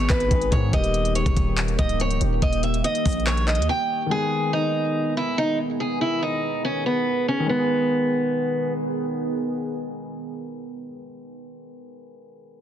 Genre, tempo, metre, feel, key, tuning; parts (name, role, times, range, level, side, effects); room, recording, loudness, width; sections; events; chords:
hip hop, trap; 142 BPM; 4/4; half-time; G# harmonic minor; A4 = 440 Hz
picked acoustic archtop guitar; melody; 0.0-8.7 s; B3 to G5; -24 LUFS; right 1 dB; low-pass filter, tape echo
dark grand piano; accompaniment; 0.0-12.6 s; D#3 to G#4; -31 LUFS; left 4 dB; low-pass filter
deep dark ambient pad; sustained chords; 0.0-10.9 s; D#3 to G#4; -29 LUFS; right 1 dB; chorus, built-in reverb
distorted 808-style bass; bass; 0.0-3.7 s; C#1 to G#2; -24 LUFS; equal; distortion
trap drum kit; drums; 0.1-3.7 s; handclaps, hi-hat, kick drum; -24 LUFS; equal; vintage 12-bit sampler grit
digital ambience; dense, heavily limited modern master, low-pass filter; -20 LUFS; side -10 dB against mid
0.0-4.1 A section; 4.1-7.5 B section; 7.5-10.9 C section
break 3.7-4.1
0.0 G#m; 0.7 D#; 4.1 G#m